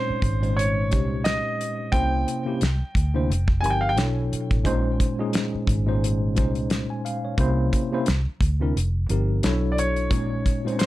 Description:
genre	R&B, neo-soul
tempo	88 BPM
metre	4/4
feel	swing 57% on 16ths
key	Bb dorian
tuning	A4 = 440 Hz
part	bright concert grand piano	melody	0.0-4.0, 9.7-10.9 s	C5 to Ab5	-28 LUFS	right 1 dB	none
part	tine electric piano	accompaniment	0.0-10.9 s	Bb2 to Ab5	-26 LUFS	left 1 dB	overdrive, fast stereo tremolo
part	vintage muted fingered electric bass	bass	0.1-10.4 s	F1 to D2	-24 LUFS	equal	none
part	damped 70s drum kit	drums	0.2-10.9 s	hi-hat, kick drum, snare drum	-24 LUFS	equal	none
room	light reverb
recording	dark, warm production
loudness	-21 LUFS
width	side -16 dB against mid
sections	0.0-10.9 A section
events	kick muted 8.7-10.1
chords	0.0 Bbm11; 1.9 C7b9; 2.6 C9; 3.3 F9sus4; 4.0 Bm11; 4.7 Bbm11; 7.4 C7b9; 8.1 C9; 8.7 F9sus4; 9.4 Bm11; 10.1 Bbm11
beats	0.56 1.24 | 1.93 2.61 3.29 3.97 | 4.65 5.33 6.02 6.70 | 7.38 8.06 8.74 9.43 | 10.11 10.79

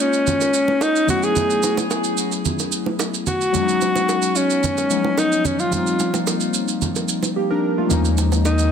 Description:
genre	amapiano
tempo	110 BPM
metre	4/4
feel	straight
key	unclear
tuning	A4 = 442 Hz
part	breathy alto saxophone	melody	0.0-8.7 s	Db4 to Ab4	-20 LUFS	equal	tape echo
part	warm analog keys	accompaniment	0.0-8.7 s	F3 to Bb4	-22 LUFS	left 3 dB	chorus
part	shaker	drums	0.1-8.7 s	none	-26 LUFS	right 7 dB	none
part	congas and bongos	percussion	0.3-8.6 s	none	-27 LUFS	right 5 dB	none
part	saturated sub bass	bass	7.9-8.7 s	Eb2	-18 LUFS	equal	none
room	light reverb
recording	dense, heavily limited modern master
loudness	-17 LUFS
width	side -7 dB against mid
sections	0.0-8.7 A section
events	drums muted 7.4-7.9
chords	0.0 Eb9sus4; 1.1 B9sus4; 3.5 Db9sus4; 5.7 F9sus4; 7.9 Eb9sus4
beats	0.27 0.81 | 1.36 1.91 2.45 3.00 | 3.54 4.09 4.63 5.18 | 5.72 6.27 6.82 7.36 | 7.91 8.45

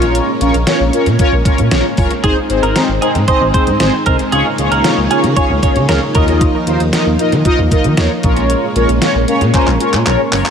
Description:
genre	synth-pop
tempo	115 BPM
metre	4/4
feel	straight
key	Bb minor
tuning	A4 = 440 Hz
part	mellow synth brass	accompaniment	0.0-10.5 s	C4 to Eb5	-15 LUFS	left 1 dB	chorus, phaser, dub echo
part	string machine, full ensemble	sustained chords	0.0-10.5 s	Db3 to F4	-19 LUFS	equal	ensemble chorus
part	smooth gliding synth bass	bass	0.0-10.4 s	Gb1 to Eb3	-16 LUFS	equal	none
part	detuned 8-bit digital drum machine	drums	0.0-10.5 s	handclaps, hi-hat, kick drum, snare drum	-17 LUFS	equal	dub echo
part	twelve-string electric guitar	second line	2.2-6.2 s	Ab4 to Db5	-18 LUFS	right 3 dB	wide subtle chorus, dub echo
room	light reverb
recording	echo-heavy mix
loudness	-11 LUFS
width	side -7 dB against mid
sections	0.0-10.5 A section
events	drum fill 9.5-10.5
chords	0.0 Bbm7; 2.2 Ab; 4.3 Db6; 6.2 Ebsus2; 8.2 Bbm7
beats	| 0.15 0.67 1.19 1.72 | 2.24 2.76 3.28 3.80 | 4.32 4.85 5.37 5.89 | 6.41 6.93 7.45 7.98 | 8.50 9.02 9.54 10.06

